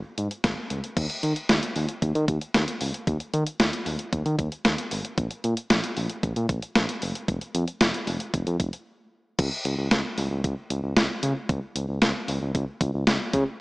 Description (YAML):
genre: synth-pop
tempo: 114 BPM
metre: 4/4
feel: straight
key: unclear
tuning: A4 = 435 Hz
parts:
  - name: smooth synth bass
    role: bass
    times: 0.2-13.4 s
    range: F1 to Eb3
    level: -26 LUFS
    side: equal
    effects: none
  - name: clean 12-bit digital drum machine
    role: drums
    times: 0.2-13.5 s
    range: crash cymbal, hi-hat, kick drum, snare drum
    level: -24 LUFS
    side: equal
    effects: none
room: moderate lush hall reverb, RT60 2.1 s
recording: big arena sound, small speaker sound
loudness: -24 LUFS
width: side -24 dB against mid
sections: 1.0-9.4 A section; 9.4-13.6 B section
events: break 8.9-9.4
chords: none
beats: 0.44 | 0.97 1.49 2.02 2.55 | 3.07 3.60 4.12 4.65 | 5.18 5.70 6.23 6.76 | 7.28 7.81 8.34 8.86 | 9.39 9.91 10.44 10.97 | 11.49 12.02 12.55 13.07